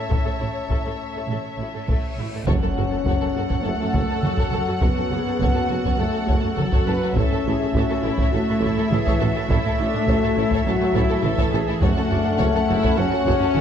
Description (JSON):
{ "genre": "cinematic, epic orchestral film score", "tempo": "103 BPM", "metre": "4/4", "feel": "straight", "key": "F# minor", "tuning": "A4 = 441 Hz", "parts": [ { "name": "warm symphonic violin section", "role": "melody", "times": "0.0-13.6 s", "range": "E5 to F#5", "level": "-31 LUFS", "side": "left 2 dB", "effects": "none" }, { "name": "warm symphonic violin section", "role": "second line", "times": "0.0-13.6 s", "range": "E4 to C#5", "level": "-32 LUFS", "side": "left 3 dB", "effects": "none" }, { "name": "warm symphonic viola section", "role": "accompaniment", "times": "0.0-13.6 s", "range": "C#4 to B4", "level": "-31 LUFS", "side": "right 1 dB", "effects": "none" }, { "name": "dark French horn section", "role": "sustained chords", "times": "0.0-13.6 s", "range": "E3 to C#4", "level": "-24 LUFS", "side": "left 3 dB", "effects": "none" }, { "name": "warm woodwind section", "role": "sustained chords", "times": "0.0-13.6 s", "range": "A3 to A5", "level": "-32 LUFS", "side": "right 1 dB", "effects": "none" }, { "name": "rich studio cello section", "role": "bass", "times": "0.0-13.6 s", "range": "F#2 to A2", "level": "-29 LUFS", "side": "right 3 dB", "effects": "none" }, { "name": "warm symphonic double bass section", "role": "bass", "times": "0.1-13.6 s", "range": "F#1 to A1", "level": "-29 LUFS", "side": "right 3 dB", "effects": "none" }, { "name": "taiko ensemble", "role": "drums", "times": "0.1-13.6 s", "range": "none", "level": "-24 LUFS", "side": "equal", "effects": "none" }, { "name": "reverse cymbal and impact", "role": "sound effects", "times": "2.1-4.8 s", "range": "none", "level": "-34 LUFS", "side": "equal", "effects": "none" }, { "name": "warm tuba", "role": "bass", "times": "2.5-13.6 s", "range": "F#1 to A1", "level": "-31 LUFS", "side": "right 4 dB", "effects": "none" }, { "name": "timpani", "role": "percussion", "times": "11.8-12.6 s", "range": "F#2", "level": "-29 LUFS", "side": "left 1 dB", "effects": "none" } ], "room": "moderate scoring stage reverb, RT60 1.8 s", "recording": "dark, warm production", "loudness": "-19 LUFS", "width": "side -8 dB against mid", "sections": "0.0-2.5 A section; 2.5-13.6 B section", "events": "reverse cymbal 2.1-2.5; impact 2.5-4.8", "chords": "0.0 A; 2.5 F#m; 7.2 A; 11.8 F#m", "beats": "| 0.11 0.70 1.29 1.88 | 2.47 3.06 3.64 4.23 | 4.82 5.40 5.98 6.57 | 7.16 7.74 8.32 8.90 | 9.49 10.07 10.65 11.22 | 11.81 12.39 12.96 13.54" }